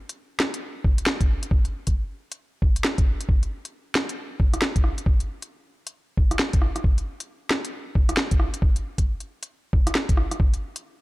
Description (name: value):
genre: future garage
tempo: 135 BPM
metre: 4/4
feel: swing 63% on 16ths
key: none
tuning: none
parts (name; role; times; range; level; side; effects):
- organic electronic drum kit; drums; 0.1-10.8 s; hi-hat, rim click, snare drum; -25 LUFS; equal; none
- electronic kick drum; drums; 0.8-10.5 s; none; -20 LUFS; equal; none
room: little or no reverb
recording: dark, warm production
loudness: -21 LUFS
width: side -20 dB against mid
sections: 0.0-11.0 A section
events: none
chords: none